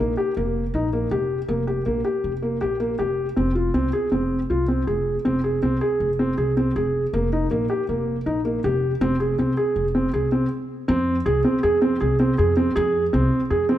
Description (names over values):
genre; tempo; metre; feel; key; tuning
contemporary instrumental, chamber music in an uneven meter; 160 BPM; 5/4; straight; F minor; A4 = 438 Hz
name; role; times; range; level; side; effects
felt-muted upright piano; arpeggios; 0.0-13.8 s; Bb3 to Ab4; -21 LUFS; equal; none
upright bass; bass; 0.0-13.8 s; F1 to F2; -25 LUFS; equal; none
room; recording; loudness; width
moderate scoring stage reverb, RT60 1.7 s; dark, warm production; -20 LUFS; side -12 dB against mid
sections
0.0-10.9 A section; 10.9-13.8 A section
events
stop 10.5-10.9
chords
0.0 Eb/F (rootless); 3.4 Fm; 7.1 Eb/F; 9.0 Fm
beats
0.36 0.74 1.11 | 1.49 1.87 2.24 2.62 2.99 | 3.37 3.75 4.12 4.50 4.87 | 5.25 5.63 6.00 6.38 6.76 | 7.13 7.51 7.88 8.26 8.64 | 9.01 9.39 9.76 10.14 10.51 | 10.89 11.26 11.64 12.01 12.38 | 12.76 13.13 13.51